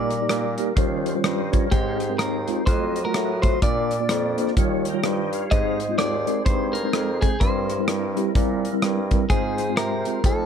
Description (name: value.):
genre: uptempo gospel.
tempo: 127 BPM.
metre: 4/4.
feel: swing 60% on 8ths.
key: Eb major.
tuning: A4 = 440 Hz.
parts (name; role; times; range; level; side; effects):
clean electric guitar; melody; 0.0-10.5 s; G4 to Eb5; -27 LUFS; equal; none.
mellow tine electric piano; accompaniment; 0.0-10.5 s; G2 to Gb5; -26 LUFS; equal; medium stereo tremolo.
percussive tonewheel organ; sustained chords; 0.0-10.5 s; F3 to Bb5; -31 LUFS; right 2 dB; slow rotary speaker, overdrive, chorus vibrato.
warm bassoon; bass; 0.0-10.5 s; Eb2 to C3; -28 LUFS; right 1 dB; none.
modern studio drum kit; drums; 0.1-10.4 s; hi-hat, kick drum, rim click; -23 LUFS; equal; none.
room: little or no reverb.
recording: dark, warm production.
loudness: -20 LUFS.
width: side -8 dB against mid.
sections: 0.0-10.5 A section.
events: none.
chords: 0.0 Eb/Bb; 0.8 Eb13; 1.7 Ab; 2.7 F7b9; 3.6 Bb; 4.6 Eb9; 5.5 Ab; 7.4 C7/G; 9.3 Fm/Ab.